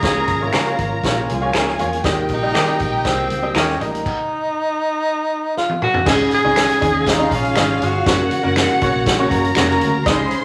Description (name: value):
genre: uptempo 1960s-style soul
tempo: 120 BPM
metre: 4/4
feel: straight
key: unclear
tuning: A4 = 440 Hz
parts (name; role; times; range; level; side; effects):
- breathy tenor saxophone; melody; 0.0-8.6 s; C4 to Ab4; -23 LUFS; equal; none
- warm studio string section; second line; 0.0-10.4 s; F4 to C6; -25 LUFS; equal; none
- bright upright piano; accompaniment; 0.0-10.4 s; Db3 to Eb5; -24 LUFS; equal; none
- percussive tonewheel organ; sustained chords; 0.0-10.4 s; Db3 to Ab4; -30 LUFS; equal; none
- vintage muted fingered electric bass; bass; 0.0-10.3 s; F1 to Eb3; -28 LUFS; equal; none
- swinging big-band drum kit; drums; 0.0-10.4 s; crash cymbal, hi-hat, kick drum, snare drum, toms; -24 LUFS; equal; none
- electric guitar through a small old amp; stabs; 0.5-3.7 s; Db4 to F5; -25 LUFS; equal; tremolo
- finger snap; percussion; 0.5-9.7 s; none; -30 LUFS; equal; none
room: wet large studio reverb, RT60 0.8 s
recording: none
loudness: -18 LUFS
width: mono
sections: 0.0-6.1 A section; 6.1-10.4 B section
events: drum fill 5.6-6.1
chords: 0.0 Db6; 2.0 Eb; 4.1 N.C.; 6.1 Dbsus2; 8.1 Gb